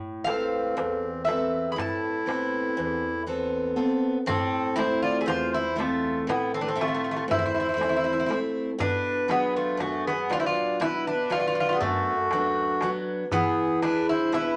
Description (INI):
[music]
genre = greek folk, Greek bouzouki band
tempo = 119 BPM (eighths)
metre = 9/8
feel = straight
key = A harmonic minor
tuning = A4 = 440 Hz
[part]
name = picked steel-string acoustic guitar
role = accompaniment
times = 0.0-14.6 s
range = E2 to E5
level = -30 LUFS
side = equal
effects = none
[part]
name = Greek bouzouki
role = melody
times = 0.2-14.6 s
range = A3 to B5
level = -30 LUFS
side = equal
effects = none
[part]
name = accordion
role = second line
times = 0.3-14.6 s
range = C4 to E5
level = -31 LUFS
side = equal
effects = none
[part]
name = darbuka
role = percussion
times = 0.3-14.6 s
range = none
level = -37 LUFS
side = equal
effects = none
[sound]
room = wet studio reverb, RT60 0.6 s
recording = none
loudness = -26 LUFS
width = mono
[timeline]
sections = 0.0-4.3 A section; 4.3-14.6 B section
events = none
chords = 0.0 Amadd9; 4.3 Am; 8.8 Bm; 13.3 E7